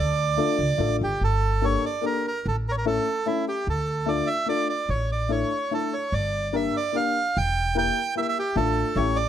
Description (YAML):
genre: musette waltz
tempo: 147 BPM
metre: 3/4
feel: rubato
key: D harmonic minor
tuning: A4 = 445 Hz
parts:
  - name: bandoneon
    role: melody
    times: 0.0-9.3 s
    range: E4 to G5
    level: -25 LUFS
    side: right 4 dB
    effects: none
  - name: upright bass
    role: bass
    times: 0.0-9.3 s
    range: E1 to D2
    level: -26 LUFS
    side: equal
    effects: none
  - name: warm upright piano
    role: accompaniment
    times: 0.4-9.2 s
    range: A3 to Bb4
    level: -27 LUFS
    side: left 6 dB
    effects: none
room: light reverb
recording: close, detailed microphones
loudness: -22 LUFS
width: side -10 dB against mid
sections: 0.0-1.2 A section; 1.2-9.3 A section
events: none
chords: 0.0 Dm; 1.2 Gmadd9; 2.4 A; 3.7 Dm; 4.9 Asus4; 6.1 Gm; 7.4 Edim; 8.6 Dm/A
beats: 0.37 0.79 | 1.21 1.62 2.04 | 2.44 2.85 3.25 | 3.65 4.06 4.47 | 4.88 5.30 5.71 | 6.13 6.54 6.95 | 7.36 7.76 8.16 | 8.56 8.96